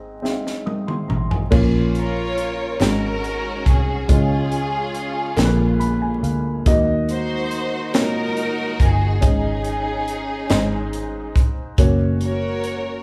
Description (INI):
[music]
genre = slow gospel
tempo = 47 BPM (dotted quarters)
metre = 6/8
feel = straight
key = unclear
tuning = A4 = 440 Hz
[part]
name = dark upright piano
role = accompaniment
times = 0.0-13.0 s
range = Ab2 to Eb6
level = -25 LUFS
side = equal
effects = none
[part]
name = vintage muted fingered electric bass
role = bass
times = 0.0-13.0 s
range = F1 to Eb2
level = -26 LUFS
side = equal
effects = none
[part]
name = crisp fusion drum kit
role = drums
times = 0.3-12.8 s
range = crash cymbal, hi-hat, kick drum, snare drum, toms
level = -22 LUFS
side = equal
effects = none
[part]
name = warm studio string section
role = melody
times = 2.0-13.0 s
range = Db4 to Db5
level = -27 LUFS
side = equal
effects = none
[part]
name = group handclap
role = percussion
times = 2.8-10.9 s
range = none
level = -39 LUFS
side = equal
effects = none
[sound]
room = moderate large studio reverb, RT60 1.0 s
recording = band playing live in one room, vinyl crackle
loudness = -20 LUFS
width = mono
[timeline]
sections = 0.0-1.5 A section; 1.5-13.0 B section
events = drum fill 0.2-1.5; upright piano fill 5.4-6.7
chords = 0.0 Ab; 1.5 Bbm; 2.8 Ab9sus4; 4.1 Db; 5.4 Bb7b9; 6.7 Ebm; 9.2 Absus4; 10.5 Ab; 11.8 Gb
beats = 0.23 | 1.51 2.80 | 4.09 5.37 | 6.66 7.94 | 9.22 10.50 | 11.78